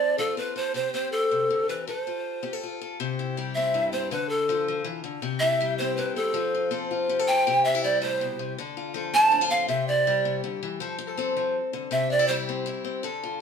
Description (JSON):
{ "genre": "highlife", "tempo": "107 BPM (dotted quarters)", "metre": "12/8", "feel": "straight", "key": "C major", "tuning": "A4 = 440 Hz", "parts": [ { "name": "breathy pan flute", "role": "melody", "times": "0.0-12.5 s", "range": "A4 to A5", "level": "-23 LUFS", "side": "right 1 dB", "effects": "none" }, { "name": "picked acoustic archtop guitar", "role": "accompaniment", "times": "0.0-13.4 s", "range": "G2 to A4", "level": "-28 LUFS", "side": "left 5 dB", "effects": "none" } ], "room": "wet studio reverb, RT60 0.8 s", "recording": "band playing live in one room", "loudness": "-23 LUFS", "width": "side -6 dB against mid", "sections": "0.0-3.0 A section; 3.0-13.4 B section", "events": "pan flute solo 3.0-13.4", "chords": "0.0 Dm7; 0.7 C; 1.9 F; 3.0 C; 4.1 Dm; 5.2 C; 6.3 F; 7.5 C; 8.6 Dm7; 9.7 C; 10.8 F; 11.9 C" }